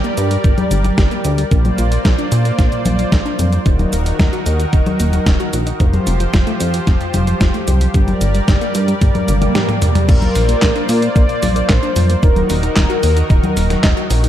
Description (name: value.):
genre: italo disco.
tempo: 112 BPM.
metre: 4/4.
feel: straight.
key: Bb major.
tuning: A4 = 440 Hz.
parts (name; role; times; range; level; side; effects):
lush unison pad; sustained chords; 0.0-14.3 s; Eb3 to D5; -21 LUFS; equal; chorus.
wide unison pluck; arpeggios; 0.0-14.3 s; F2 to Eb5; -25 LUFS; left 2 dB; digital delay.
clean 12-bit digital drum machine; drums; 0.0-14.3 s; cabasa, congas, crash cymbal, handclaps, hi-hat, snare drum, toms; -19 LUFS; equal; overdrive.
chorused synth bass; bass; 0.2-14.3 s; Eb1 to Bb2; -17 LUFS; equal; none.
electronic kick drum; drums; 0.4-13.9 s; none; -14 LUFS; equal; overdrive.
swell; sound effects; 9.2-10.1 s; none; -24 LUFS; right 3 dB; none.
mellow synth brass; melody; 10.1-13.5 s; Bb4 to D5; -20 LUFS; left 2 dB; chorus, cassette tape, ping-pong delay.
room: light reverb, digital ambience.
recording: dark, warm production.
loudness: -12 LUFS.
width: side -11 dB against mid.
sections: 0.0-10.1 A section; 10.1-14.3 B section.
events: swell 9.2-10.1; drum fill 9.3-10.1.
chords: 0.0 Gm; 1.5 Bbadd9; 3.7 Ebm; 5.8 Fsus2; 7.9 Gm; 10.1 Bbadd9; 12.2 Ebm.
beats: 0.44 0.98 | 1.52 2.05 2.59 3.12 | 3.66 4.19 4.73 5.27 | 5.80 6.34 6.87 7.41 | 7.94 8.48 9.02 9.55 | 10.09 10.62 11.16 11.69 | 12.23 12.77 13.30 13.84.